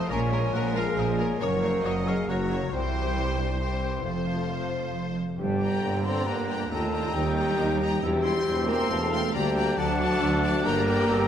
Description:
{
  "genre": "cinematic, heroic adventure film score",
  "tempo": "137 BPM",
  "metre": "3/4",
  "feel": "straight",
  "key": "G minor from 5.4 s",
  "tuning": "A4 = 440 Hz",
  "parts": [
    { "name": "warm symphonic violin section", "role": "melody", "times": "0.0-11.3 s", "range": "Bb4 to C6", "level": "-35 LUFS", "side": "left 6 dB", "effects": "none" },
    { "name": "mellow clarinet", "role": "second line", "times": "0.0-11.3 s", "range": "Bb3 to Db5", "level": "-36 LUFS", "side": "left 2 dB", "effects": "none" },
    { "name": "rich symphonic violin section", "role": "second line", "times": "0.0-11.3 s", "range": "A4 to A5", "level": "-38 LUFS", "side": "left 2 dB", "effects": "none" },
    { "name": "silver concert flute", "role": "second line", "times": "0.0-11.3 s", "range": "F5 to C6", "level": "-36 LUFS", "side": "left 2 dB", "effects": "none" },
    { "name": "warm oboe", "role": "second line", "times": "0.0-5.1 s", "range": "C5 to Gb5", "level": "-38 LUFS", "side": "right 1 dB", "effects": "none" },
    { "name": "bright trombone section", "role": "sustained chords", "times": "0.0-11.3 s", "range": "Bb2 to C4", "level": "-37 LUFS", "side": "right 3 dB", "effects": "none" },
    { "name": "concert harp", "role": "arpeggios", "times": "0.0-11.3 s", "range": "F2 to C6", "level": "-37 LUFS", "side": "left 9 dB", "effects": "none" },
    { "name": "warm symphonic viola section", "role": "accompaniment", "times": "0.1-11.3 s", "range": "E3 to F5", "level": "-36 LUFS", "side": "right 2 dB", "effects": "none" },
    { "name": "mellow French horn section", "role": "sustained chords", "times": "0.1-11.3 s", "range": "A3 to C5", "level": "-30 LUFS", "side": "left 2 dB", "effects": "none" },
    { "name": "clear symphonic double bass section", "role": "bass", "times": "0.1-11.3 s", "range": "F1 to G2", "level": "-31 LUFS", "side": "right 3 dB", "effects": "none" },
    { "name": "rich symphonic cello section", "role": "bass", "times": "0.1-11.3 s", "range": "C2 to C4", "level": "-31 LUFS", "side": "right 2 dB", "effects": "none" },
    { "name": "warm tuba", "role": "bass", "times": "5.4-11.3 s", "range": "E1 to Eb2", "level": "-31 LUFS", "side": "right 3 dB", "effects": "none" }
  ],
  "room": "moderate scoring stage reverb, RT60 1.9 s",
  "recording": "none",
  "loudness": "-24 LUFS",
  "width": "side -9 dB against mid",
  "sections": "0.0-5.4 A section; 5.4-11.3 B section",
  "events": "none",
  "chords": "0.1 Bbm7; 1.4 Gb; 2.7 C; 4.1 F; 5.4 Gm; 6.7 Eb; 8.0 C/E; 9.3 Gm/D; 9.8 D; 10.7 Gm",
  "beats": "| 0.09 0.53 0.98 | 1.41 1.85 2.29 | 2.73 3.16 3.60 | 4.05 4.50 4.95 | 5.39 5.83 6.27 | 6.71 7.15 7.59 | 8.03 8.47 8.91 | 9.35 9.78 10.22 | 10.65 11.09"
}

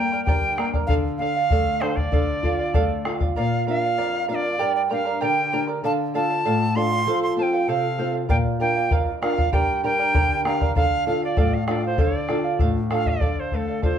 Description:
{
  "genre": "andean folk, Andean ensemble",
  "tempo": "97 BPM",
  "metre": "2/4",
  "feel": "straight",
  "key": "D minor",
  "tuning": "A4 = 441 Hz",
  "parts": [
    { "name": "bright reedy quena", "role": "melody", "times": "0.0-14.0 s", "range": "A4 to C6", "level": "-25 LUFS", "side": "equal", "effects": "plate reverb" },
    { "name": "charango", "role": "accompaniment", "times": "0.0-14.0 s", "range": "G4 to Bb5", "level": "-26 LUFS", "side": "right 7 dB", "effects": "none" },
    { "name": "nylon-string guitar", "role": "accompaniment", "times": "0.0-14.0 s", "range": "F2 to Bb4", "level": "-26 LUFS", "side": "left 3 dB", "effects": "none" },
    { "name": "bombo", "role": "percussion", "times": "0.3-3.4, 8.3-14.0 s", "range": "none", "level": "-23 LUFS", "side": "left 1 dB", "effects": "none" }
  ],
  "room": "wet small room reverb, RT60 0.5 s",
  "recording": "heard from further back in the room",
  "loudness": "-20 LUFS",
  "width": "side -8 dB against mid",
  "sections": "0.0-3.4 A section; 3.4-13.2 A section",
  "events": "none",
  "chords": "0.0 Gm; 0.9 Dm; 3.4 Bb; 4.6 Gm; 5.8 Dm; 7.1 F; 8.3 Bb; 9.5 Gm; 10.8 Dm",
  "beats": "0.28 | 0.89 1.51 | 2.13 2.75 | 3.36 3.98 | 4.60 5.21 | 5.83 6.45 | 7.06 7.68 | 8.29 8.91 | 9.53 10.14 | 10.76 11.37 | 11.99 12.60 | 13.22 13.84"
}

